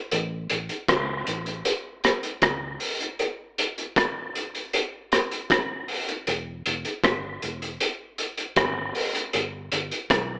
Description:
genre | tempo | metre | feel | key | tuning
dub reggae | 78 BPM | 4/4 | straight | E dorian | A4 = 444 Hz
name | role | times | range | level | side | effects
vintage muted fingered electric bass | bass | 0.1-10.4 s | E1 to C#2 | -35 LUFS | equal | none
crunchy breakbeat drum kit | drums | 0.1-10.3 s | hi-hat, kick drum, rim click | -23 LUFS | equal | none
room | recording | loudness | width
wet spring reverb, RT60 2.5 s | AM radio sound, faint mains hum | -24 LUFS | side -32 dB against mid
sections
0.0-10.4 A section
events
none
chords
none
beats
| 0.12 0.89 1.65 2.42 | 3.19 3.96 4.73 5.49 | 6.26 7.03 7.80 8.57 | 9.34 10.10

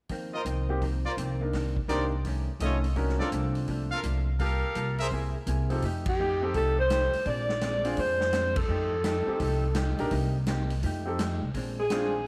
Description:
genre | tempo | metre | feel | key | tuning
jazz, big band swing | 168 BPM | 4/4 | swing 65% on 8ths | F mixolydian | A4 = 440 Hz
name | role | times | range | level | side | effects
vintage hollow-body jazz guitar | accompaniment | 0.1-12.2 s | F2 to A4 | -39 LUFS | equal | none
swinging big-band drum kit | drums | 0.1-12.0 s | hi-hat, kick drum, ride cymbal, snare drum | -38 LUFS | equal | none
brilliant trumpet section | stabs | 0.3-5.1 s | Eb4 to F5 | -36 LUFS | equal | none
upright bass | bass | 0.4-12.2 s | Bb1 to F2 | -32 LUFS | equal | none
clear baby grand piano | accompaniment | 0.7-12.1 s | F3 to Bb4 | -36 LUFS | equal | none
mellow saxophone section | melody | 6.1-12.2 s | G4 to D5 | -30 LUFS | equal | tape echo
room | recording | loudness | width
light reverb | none | -28 LUFS | mono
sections
0.1-5.8 A section; 5.8-12.3 B section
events
band accent 6.0, 8.5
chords
0.1 F7sus4; 1.5 Cm9; 2.2 F7b13; 3.0 Bbmaj7; 4.4 Gm9; 5.1 C7alt; 5.8 F9; 7.3 Bb9; 8.7 F9; 10.1 Cm7; 10.8 F9; 11.5 Bb9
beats
| 0.10 0.46 0.82 1.18 | 1.53 1.89 2.25 2.61 | 2.96 3.32 3.68 4.04 | 4.40 4.75 5.11 5.47 | 5.83 6.19 6.54 6.90 | 7.26 7.62 7.97 8.33 | 8.69 9.04 9.40 9.76 | 10.12 10.47 10.83 11.19 | 11.54 11.90

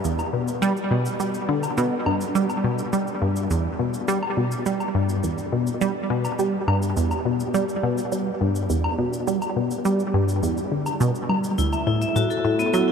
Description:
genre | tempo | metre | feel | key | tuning
ambient, sequencer-driven space music | 104 BPM | 4/4 | straight | E minor | A4 = 440 Hz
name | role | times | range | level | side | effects
tight sequenced synth | riff | 0.0-12.9 s | D2 to G3 | -21 LUFS | equal | chorus, analog delay, shimmer reverb
cabasa and woodblock | percussion | 0.0-12.9 s | none | -34 LUFS | left 3 dB | analog delay
vibraphone with hard mallets | arpeggios | 11.6-12.9 s | B3 to E5 | -22 LUFS | left 1 dB | auto-pan, analog delay, shimmer reverb
room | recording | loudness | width
wet huge ambient reverb, RT60 9.2 s | in a vast, echoing space | -21 LUFS | side -6 dB against mid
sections
0.0-12.9 A section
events
none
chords
0.0 Em; 11.6 D6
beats
| 0.04 0.62 1.20 1.77 | 2.35 2.93 3.51 4.08 | 4.66 5.24 5.81 6.39 | 6.97 7.54 8.12 8.70 | 9.28 9.85 10.43 11.01 | 11.58 12.16 12.74

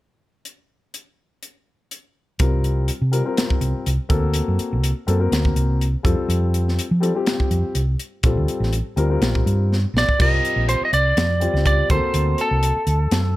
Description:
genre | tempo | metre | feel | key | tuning
electric jazz fusion | 123 BPM | 4/4 | swing 55% on 16ths | unclear | A4 = 441 Hz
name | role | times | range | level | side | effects
crisp fusion drum kit | drums | 0.5-13.2 s | crash cymbal, hi-hat, kick drum, snare drum | -22 LUFS | equal | none
warm concert grand piano | accompaniment | 2.4-12.7 s | G3 to Bb4 | -25 LUFS | left 4 dB | none
hollow-body short-scale fingered electric bass | bass | 2.4-13.4 s | A1 to F3 | -20 LUFS | equal | none
lightly driven lead guitar | melody | 10.0-13.4 s | A4 to Eb5 | -20 LUFS | right 1 dB | none
room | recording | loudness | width
studio reverb | none | -17 LUFS | side -17 dB against mid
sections
0.5-2.4 A section; 2.4-10.2 B section; 10.2-13.4 C section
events
drum fill 9.7-10.2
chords
0.5 N.C.; 2.4 C7sus4; 4.1 D7b13; 6.0 Fadd9; 8.2 Bbmaj7; 10.2 Cm11; 11.9 D7b13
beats
| 0.46 0.94 1.43 1.91 | 2.40 2.89 3.37 3.86 | 4.35 4.83 5.32 5.81 | 6.29 6.78 7.27 7.75 | 8.24 8.73 9.22 9.71 | 10.19 10.68 11.17 11.65 | 12.14 12.63 13.12

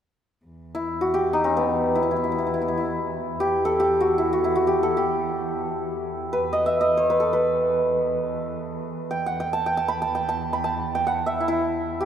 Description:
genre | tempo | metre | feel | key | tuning
Persian modal ensemble | free time | none | none | E avaz esfahan | A4 = 440 Hz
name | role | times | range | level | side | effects
muted cello | drone | 0.5-12.1 s | E2 | -33 LUFS | right 2 dB | none
santur | melody | 0.7-12.1 s | B3 to B5 | -21 LUFS | equal | none
room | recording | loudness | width
wet cathedral reverb, RT60 6.7 s | recorded in a church or concert hall | -21 LUFS | side -9 dB against mid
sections
0.4-12.1 A section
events
none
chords
none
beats
free time

